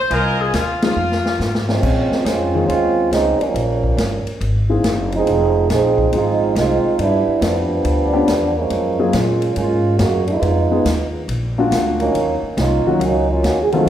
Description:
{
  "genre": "jazz, big band swing",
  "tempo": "140 BPM",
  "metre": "4/4",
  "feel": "swing 66% on 8ths",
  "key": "Bb minor",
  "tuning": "A4 = 439 Hz",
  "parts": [
    { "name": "bright saxophone section", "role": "melody", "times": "0.0-1.7 s", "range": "F4 to C5", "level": "-20 LUFS", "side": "left 2 dB", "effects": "none" },
    { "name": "warm trumpet section", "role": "stabs", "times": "0.1-0.8 s", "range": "F4 to Ab5", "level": "-24 LUFS", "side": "right 1 dB", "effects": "none" },
    { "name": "upright bass", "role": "bass", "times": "0.1-13.9 s", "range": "F1 to Bb2", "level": "-21 LUFS", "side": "equal", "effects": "none" },
    { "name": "swinging big-band drum kit", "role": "drums", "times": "0.1-13.8 s", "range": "crash cymbal, hi-hat, kick drum, ride cymbal, snare drum", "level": "-24 LUFS", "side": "left 1 dB", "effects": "none" },
    { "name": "dark baby grand piano", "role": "accompaniment", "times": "0.8-13.9 s", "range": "Eb3 to Ab4", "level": "-21 LUFS", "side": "left 3 dB", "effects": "none" },
    { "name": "muted trombone section", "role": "second line", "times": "1.7-13.9 s", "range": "Db3 to A4", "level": "-17 LUFS", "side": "right 3 dB", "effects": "none" }
  ],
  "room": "wet recital hall reverb, RT60 1.4 s",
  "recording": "heard from further back in the room",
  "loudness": "-15 LUFS",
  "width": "side -10 dB against mid",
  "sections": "0.0-1.8 A section; 1.8-13.9 B section",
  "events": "band accent 0.8; drum fill 1.0-1.8; trombone section solo 1.8-13.9",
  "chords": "0.0 Fm7; 1.8 Bbm11; 3.6 Gm7b5; 4.4 C7alt; 5.3 Fm7; 7.0 G7; 8.7 Gbmaj9; 10.4 Fm7b5; 11.3 Bb7b13; 12.2 Ebm7"
}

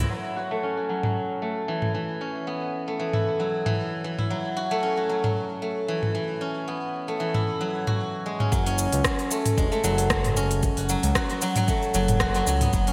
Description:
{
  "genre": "organic downtempo",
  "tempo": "114 BPM",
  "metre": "4/4",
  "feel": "swing 54% on 16ths",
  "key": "F# minor",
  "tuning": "A4 = 442 Hz",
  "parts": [
    { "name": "steel-string zither", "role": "arpeggios", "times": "0.0-12.9 s", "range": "E3 to F#4", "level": "-28 LUFS", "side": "equal", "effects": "low-pass filter, digital delay" },
    { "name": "smooth synth bass", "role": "bass", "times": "0.0-0.1, 8.5-12.9 s", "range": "E1 to C#2", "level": "-28 LUFS", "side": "equal", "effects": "none" },
    { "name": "organic electronic drum kit", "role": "drums", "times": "1.0-12.9 s", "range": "hi-hat, rim click, shaker, toms", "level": "-30 LUFS", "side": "equal", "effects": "gated reverb" },
    { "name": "electronic kick drum", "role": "drums", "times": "8.5-12.8 s", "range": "none", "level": "-30 LUFS", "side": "equal", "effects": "none" }
  ],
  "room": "wet lush hall reverb, RT60 2.5 s",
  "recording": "bright 1980s-style digital production",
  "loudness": "-26 LUFS",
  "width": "mono",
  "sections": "0.1-8.5 A section; 8.5-12.9 B section",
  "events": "none",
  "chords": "0.1 F#m7"
}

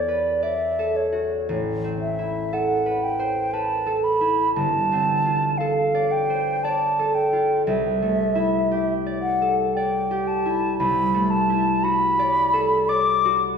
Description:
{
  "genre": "classical, impressionist duo for flute and harp",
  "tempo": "58 BPM",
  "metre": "3/4",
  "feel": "rubato",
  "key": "unclear",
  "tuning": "A4 = 437 Hz",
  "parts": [
    { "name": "concert flute", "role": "melody", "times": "0.0-13.4 s", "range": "C#5 to D6", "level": "-22 LUFS", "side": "equal", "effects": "none" },
    { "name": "concert harp", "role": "accompaniment", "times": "0.0-13.6 s", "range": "G1 to D5", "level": "-23 LUFS", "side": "equal", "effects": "none" }
  ],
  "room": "wet recital hall reverb, RT60 1.6 s",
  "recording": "heard from further back in the room",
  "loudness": "-19 LUFS",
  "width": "side -6 dB against mid",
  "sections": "0.0-13.6 A section",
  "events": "none",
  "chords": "0.0 E9sus4; 1.5 Amadd9; 4.6 G9sus4; 7.7 C69; 10.8 D69/C"
}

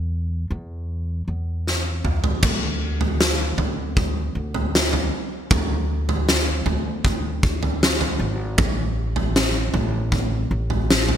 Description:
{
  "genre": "pop ballad",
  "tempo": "78 BPM",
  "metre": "4/4",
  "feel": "straight",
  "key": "unclear",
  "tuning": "A4 = 445 Hz",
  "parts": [
    { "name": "upright bass", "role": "bass", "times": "0.0-11.2 s", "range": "G#1 to E2", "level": "-24 LUFS", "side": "equal", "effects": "none" },
    { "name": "huge arena drum kit", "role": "drums", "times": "1.7-11.2 s", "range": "crash cymbal, kick drum, snare drum, toms", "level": "-21 LUFS", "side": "equal", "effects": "gated reverb" }
  ],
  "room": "light reverb",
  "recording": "bright 1980s-style digital production",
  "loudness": "-20 LUFS",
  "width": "side -9 dB against mid",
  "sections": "0.0-2.4 A section; 2.4-11.2 B section",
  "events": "drum fill 1.7-2.4",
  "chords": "none"
}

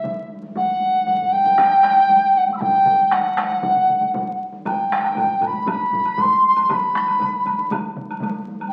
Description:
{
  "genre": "japanese traditional, taiko drum ensemble",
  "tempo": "117 BPM",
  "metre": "4/4",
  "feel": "straight",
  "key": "B miyako bushi",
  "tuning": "A4 = 440 Hz",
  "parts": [
    { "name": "reedy large dizi", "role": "melody", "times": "0.0-8.7 s", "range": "E5 to E6", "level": "-18 LUFS", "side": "equal", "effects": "none" },
    { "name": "taiko ensemble", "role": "percussion", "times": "0.0-8.7 s", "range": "none", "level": "-33 LUFS", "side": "equal", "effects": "none" },
    { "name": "taiko ensemble", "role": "percussion", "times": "0.0-8.3 s", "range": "none", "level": "-34 LUFS", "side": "equal", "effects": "none" },
    { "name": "taiko ensemble", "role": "percussion", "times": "0.6-7.8 s", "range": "none", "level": "-35 LUFS", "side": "equal", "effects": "none" },
    { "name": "taiko ensemble", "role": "percussion", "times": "1.1-6.3 s", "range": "none", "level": "-32 LUFS", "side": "equal", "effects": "none" },
    { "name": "woodblock", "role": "percussion", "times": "4.7-8.7 s", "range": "none", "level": "-33 LUFS", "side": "equal", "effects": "none" }
  ],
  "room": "wet large studio reverb, RT60 0.9 s",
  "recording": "very old 78 rpm record, vinyl crackle",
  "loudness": "-18 LUFS",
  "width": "mono",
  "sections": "0.0-8.7 A section",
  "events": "none",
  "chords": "none"
}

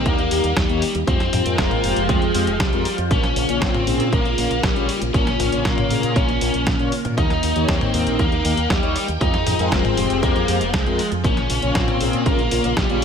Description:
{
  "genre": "italo disco",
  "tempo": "118 BPM",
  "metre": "4/4",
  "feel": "straight",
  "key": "Bb dorian",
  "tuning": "A4 = 444 Hz",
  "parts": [
    { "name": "biting lead guitar", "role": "melody", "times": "0.0-13.0 s", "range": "G3 to Eb5", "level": "-23 LUFS", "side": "left 1 dB", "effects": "overdrive, digital delay" },
    { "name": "phased string machine", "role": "sustained chords", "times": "0.0-13.0 s", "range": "Db3 to G5", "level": "-25 LUFS", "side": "equal", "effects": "ensemble chorus, phaser" },
    { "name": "mellow synth brass", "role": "stabs", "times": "0.0-13.0 s", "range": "Bb2 to Db5", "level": "-26 LUFS", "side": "left 4 dB", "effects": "chorus, cassette tape" },
    { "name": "fingered electric bass with an envelope filter", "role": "bass", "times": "0.0-13.0 s", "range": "F1 to Bb2", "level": "-25 LUFS", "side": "right 1 dB", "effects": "none" },
    { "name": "detuned 8-bit digital drum machine", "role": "drums", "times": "0.1-13.0 s", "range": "hi-hat, snare drum, toms", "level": "-26 LUFS", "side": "equal", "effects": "studio reverb" },
    { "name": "electronic kick drum", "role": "drums", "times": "0.1-12.9 s", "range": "none", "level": "-22 LUFS", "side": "right 1 dB", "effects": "overdrive, studio reverb" }
  ],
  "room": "light reverb, digital ambience",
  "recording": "none",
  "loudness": "-17 LUFS",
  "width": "side -7 dB against mid",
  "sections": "0.0-13.0 A section",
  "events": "none",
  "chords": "0.0 Eb; 1.1 Fmadd9; 3.1 Bbm; 7.2 Eb; 9.2 Fmadd9; 11.2 Bbm"
}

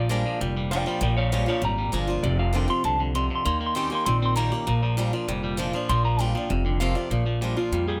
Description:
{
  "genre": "rockabilly",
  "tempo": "197 BPM",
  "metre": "4/4",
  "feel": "straight",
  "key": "Bb mixolydian",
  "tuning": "A4 = 440 Hz",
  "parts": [
    { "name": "electric guitar through a small old amp", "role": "melody", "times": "0.0-8.0 s", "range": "F4 to C6", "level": "-30 LUFS", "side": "equal", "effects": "digital delay" },
    { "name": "picked swing-style acoustic guitar", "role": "accompaniment", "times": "0.0-8.0 s", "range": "F2 to G4", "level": "-33 LUFS", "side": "equal", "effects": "none" },
    { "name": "twangy electric guitar", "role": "riff", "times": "0.0-8.0 s", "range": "F2 to C4", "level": "-32 LUFS", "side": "equal", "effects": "none" },
    { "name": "upright bass", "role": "bass", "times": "0.0-8.0 s", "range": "F1 to F2", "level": "-28 LUFS", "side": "equal", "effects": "none" }
  ],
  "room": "light reverb",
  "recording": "none",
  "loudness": "-25 LUFS",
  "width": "mono",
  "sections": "0.0-7.1 A section",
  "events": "clean electric guitar solo 0.0-7.1",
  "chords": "0.0 Bb7; 2.2 F7; 3.5 Eb7; 4.7 Bb7; 6.5 F7; 7.1 Bb7"
}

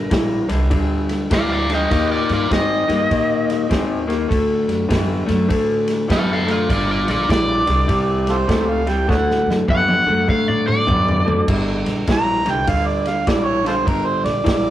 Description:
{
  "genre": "electric blues shuffle",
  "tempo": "100 BPM",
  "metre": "4/4",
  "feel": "swing 63% on 8ths",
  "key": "G minor",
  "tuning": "A4 = 441 Hz",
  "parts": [
    { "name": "crunchy overdriven guitar", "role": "melody", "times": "0.0-11.4 s", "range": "F4 to F#5", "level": "-20 LUFS", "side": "equal", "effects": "spring reverb" },
    { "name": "electric guitar through a small old amp", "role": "riff", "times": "0.0-14.7 s", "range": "G2 to C4", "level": "-20 LUFS", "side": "left 2 dB", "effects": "none" },
    { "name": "upright bass", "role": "bass", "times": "0.0-14.7 s", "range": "G1 to Bb2", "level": "-24 LUFS", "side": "equal", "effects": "none" },
    { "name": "vintage drum kit", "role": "drums", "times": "0.1-14.6 s", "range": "crash cymbal, kick drum, ride cymbal, snare drum, toms", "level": "-22 LUFS", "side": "equal", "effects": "none" },
    { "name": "warm harmonica", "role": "second line", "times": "8.3-14.7 s", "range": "F4 to Bb5", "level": "-21 LUFS", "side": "right 3 dB", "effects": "overdrive" }
  ],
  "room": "moderate small room reverb, RT60 0.6 s",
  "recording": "rough rehearsal-room recording",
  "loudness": "-16 LUFS",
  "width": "side -12 dB against mid",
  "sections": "0.0-11.5 A section; 11.5-14.7 B section",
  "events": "drum fill 9.1-11.5; harmonica solo 11.5-14.7",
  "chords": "0.0 Gm; 1.9 Eb; 4.3 D; 6.7 Gm7; 7.9 C5; 9.1 D; 11.5 Gm"
}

